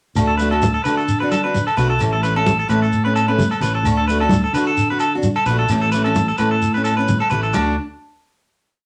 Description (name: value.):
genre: highlife guitar band.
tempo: 130 BPM.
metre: 4/4.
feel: swing 55% on 16ths.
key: D major.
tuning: A4 = 439 Hz.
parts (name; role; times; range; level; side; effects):
picked steel-string acoustic guitar; accompaniment; 0.2-7.7 s; E3 to F#4; -27 LUFS; equal; none.
fingered electric bass; bass; 0.2-7.8 s; A1 to D3; -23 LUFS; equal; none.
agogo bells; percussion; 0.2-7.7 s; none; -28 LUFS; equal; none.
congas; percussion; 0.2-7.8 s; none; -25 LUFS; equal; none.
shekere; percussion; 0.2-7.8 s; none; -27 LUFS; equal; none.
electric guitar at the edge of break-up; arpeggios; 0.3-7.8 s; D4 to B4; -23 LUFS; equal; none.
room: moderate studio reverb, RT60 0.5 s.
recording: none.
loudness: -18 LUFS.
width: mono.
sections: 0.2-7.5 groove; 7.5-8.8 final chord.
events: none.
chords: 0.2 D; 2.0 A; 3.9 D; 5.7 A; 7.5 D.